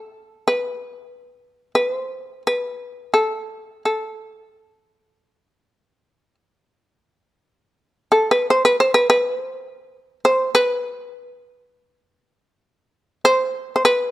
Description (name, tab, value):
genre	japanese traditional, Japanese chamber music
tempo	free time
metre	none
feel	none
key	unclear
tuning	A4 = 439 Hz
part	shamisen	solo	0.0-14.1 s	A4 to C5	-17 LUFS	equal	none
room	light reverb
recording	close, detailed microphones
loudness	-17 LUFS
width	side -16 dB against mid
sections	0.0-14.1 A section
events	none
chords	none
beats	free time